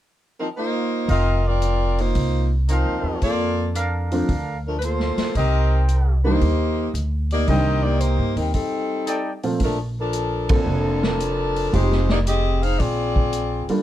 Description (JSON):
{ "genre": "jazz, big band swing", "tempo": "113 BPM", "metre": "4/4", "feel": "swing 68% on 8ths", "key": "Bb major", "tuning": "A4 = 443 Hz", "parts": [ { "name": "dark saxophone section", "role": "melody", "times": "0.4-13.7 s", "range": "F3 to F5", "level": "-23 LUFS", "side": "left 1 dB", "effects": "none" }, { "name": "mellow trumpet section", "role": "stabs", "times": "1.1-9.3 s", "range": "D4 to G5", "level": "-29 LUFS", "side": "right 2 dB", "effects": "none" }, { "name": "upright bass", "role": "bass", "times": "1.1-13.7 s", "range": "F1 to G2", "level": "-22 LUFS", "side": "equal", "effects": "none" }, { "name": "swinging big-band drum kit", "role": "drums", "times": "1.1-13.8 s", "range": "hi-hat, kick drum, ride cymbal, snare drum", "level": "-25 LUFS", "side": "equal", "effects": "none" }, { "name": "warm baby grand piano", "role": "accompaniment", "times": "4.1-13.8 s", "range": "Bb2 to A4", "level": "-24 LUFS", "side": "right 2 dB", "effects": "none" } ], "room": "light reverb", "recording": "dark, warm production", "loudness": "-19 LUFS", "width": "side -12 dB against mid", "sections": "0.0-1.1 A section; 1.1-9.6 B section; 9.6-13.8 C section", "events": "break 8.5-9.6; band accent 10.4", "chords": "0.0 F7sus4; 3.2 Bbmaj7/F; 5.3 Cm7; 8.5 F13; 9.6 Bbmaj7; 11.7 Fm9; 12.8 Bb13" }